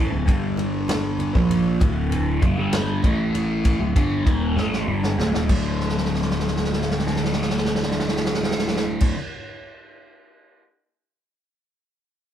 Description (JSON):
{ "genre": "psychedelic rock", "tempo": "65 BPM (dotted quarters)", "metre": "6/8", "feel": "straight", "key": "unclear", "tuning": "A4 = 440 Hz", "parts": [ { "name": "fuzz guitar", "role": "riff", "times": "0.0-9.2 s", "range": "D2 to Bb3", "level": "-23 LUFS", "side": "equal", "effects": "distortion, phaser" }, { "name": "picked electric bass", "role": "bass", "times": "0.0-9.1 s", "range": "D1 to Bb1", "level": "-27 LUFS", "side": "equal", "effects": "none" }, { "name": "vintage drum kit", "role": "drums", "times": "0.3-10.6 s", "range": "crash cymbal, kick drum, ride cymbal, snare drum", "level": "-23 LUFS", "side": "equal", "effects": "none" }, { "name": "congas", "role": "percussion", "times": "0.3-9.1 s", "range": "none", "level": "-34 LUFS", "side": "right 1 dB", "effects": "none" } ], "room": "light reverb", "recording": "band playing live in one room", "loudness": "-19 LUFS", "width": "side -10 dB against mid", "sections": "0.0-5.5 A section; 5.5-9.2 B section", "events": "drum fill 4.6-5.5, 5.8-9.0", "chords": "0.1 D5; 0.3 G5; 1.4 D; 3.0 A5; 3.8 D5" }